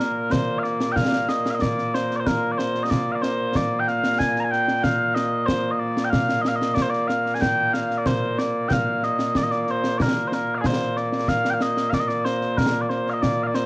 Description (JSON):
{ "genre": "scottish traditional, Scottish pipe music", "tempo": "93 BPM", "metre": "4/4", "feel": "straight", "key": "Bb major", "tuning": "A4 = 441 Hz", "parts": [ { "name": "mellow small bagpipes", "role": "melody", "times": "0.0-13.7 s", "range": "Bb2 to Bb5", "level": "-21 LUFS", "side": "equal", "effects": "cassette tape" }, { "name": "concert snare drum and concert bass drum", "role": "drums", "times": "0.0-13.7 s", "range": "none", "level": "-25 LUFS", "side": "equal", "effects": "cassette tape" } ], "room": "light reverb, studio ambience", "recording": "home recording on cassette", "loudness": "-20 LUFS", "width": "side -25 dB against mid", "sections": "1.0-11.3 A section; 11.3-13.7 A section", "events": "none", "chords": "none" }